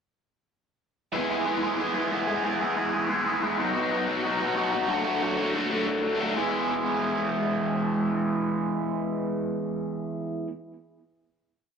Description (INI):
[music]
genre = punk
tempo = 184 BPM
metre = 4/4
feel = straight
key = E major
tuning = A4 = 441 Hz
[part]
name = raw garage guitar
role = solo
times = 1.1-10.5 s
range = B2 to G#4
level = -25 LUFS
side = equal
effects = overdrive, phaser, analog delay
[sound]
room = wet small room reverb, RT60 0.5 s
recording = rough rehearsal-room recording, cassette tape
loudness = -25 LUFS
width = side -6 dB against mid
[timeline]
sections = 1.1-6.4 verse; 6.4-9.0 final chord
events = none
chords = 1.1 E; 3.6 B; 4.9 D; 6.4 E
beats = | 1.15 1.47 1.80 2.12 | 2.44 2.77 3.09 3.42 | 3.74 4.07 4.40 4.72 | 5.05 5.38 5.70 6.03 | 6.36 6.68 7.01 7.34 | 7.67 7.99 8.32 8.65